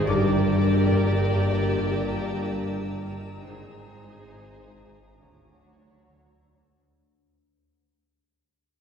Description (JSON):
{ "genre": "cinematic, suspense film score", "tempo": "70 BPM", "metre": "4/4", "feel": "straight", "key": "G phrygian", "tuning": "A4 = 437 Hz", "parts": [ { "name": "muted chamber violin section", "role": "melody", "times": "0.0-6.8 s", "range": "C5 to D5", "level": "-36 LUFS", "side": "left 3 dB", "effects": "none" }, { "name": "muted chamber violin section", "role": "second line", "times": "0.0-6.8 s", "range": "F#4 to Bb4", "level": "-34 LUFS", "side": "equal", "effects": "none" }, { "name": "muted studio viola section", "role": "accompaniment", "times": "0.0-6.8 s", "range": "D4 to G4", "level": "-33 LUFS", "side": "equal", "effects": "none" }, { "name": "warbly tape-like pad", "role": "sustained chords", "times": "0.0-7.0 s", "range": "F#4 to Ab5", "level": "-39 LUFS", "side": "right 2 dB", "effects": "chorus, built-in reverb" }, { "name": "concert harp", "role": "riff", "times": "0.0-7.0 s", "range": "G2 to D4", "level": "-28 LUFS", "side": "left 3 dB", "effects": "none" }, { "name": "muted chamber cello section", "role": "bass", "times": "0.0-6.8 s", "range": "D2 to Ab2", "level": "-28 LUFS", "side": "right 2 dB", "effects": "none" }, { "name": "muted chamber double bass section", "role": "bass", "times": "0.0-6.8 s", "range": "G1 to D2", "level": "-28 LUFS", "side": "right 2 dB", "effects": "none" }, { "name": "swarming drone", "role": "drone", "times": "0.0-7.0 s", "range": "G1 to D2", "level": "-38 LUFS", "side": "equal", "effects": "none" }, { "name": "mellow French horn section", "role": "sustained chords", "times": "0.1-6.6 s", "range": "F#3 to C#5", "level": "-37 LUFS", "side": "left 5 dB", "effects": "none" }, { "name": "concert harp", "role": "texture", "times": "0.1-5.7 s", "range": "Bb4 to D7", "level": "-39 LUFS", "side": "equal", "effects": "none" }, { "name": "muted chamber violin section", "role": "texture", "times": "0.1-6.5 s", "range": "Bb5 to E6", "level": "-46 LUFS", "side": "left 2 dB", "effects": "none" } ], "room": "wet scoring stage reverb, RT60 1.7 s", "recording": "heard from further back in the room", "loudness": "-21 LUFS", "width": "side -7 dB against mid", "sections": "0.0-7.0 A section", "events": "fade-out 0.0-7.0", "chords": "0.1 Gm; 3.5 Ab; 5.2 Dmaj7", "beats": "| 0.07 0.92 1.77 2.62 | 3.48 4.35 5.23 6.12" }